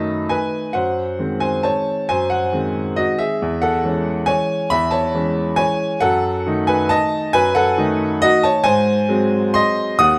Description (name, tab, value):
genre	classical, piano waltz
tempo	136 BPM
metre	3/4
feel	uneven beats, rubato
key	C# minor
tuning	A4 = 439 Hz
part	clear grand piano	solo	0.0-10.2 s	D#2 to D#6	-18 LUFS	equal	none
room	moderate recital hall reverb, RT60 1.5 s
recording	none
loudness	-18 LUFS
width	mono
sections	0.0-10.2 A section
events	none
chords	0.0 D#dim/F#; 0.8 G#7/F#; 3.4 C#m/E; 6.0 D#dim/F#; 8.7 G#7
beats	0.31 | 0.75 1.20 1.66 | 2.10 2.53 2.98 | 3.42 3.85 4.29 | 4.72 5.15 5.59 | 6.02 6.46 6.91 | 7.35 7.78 8.23 | 8.66 9.10 9.55 | 10.00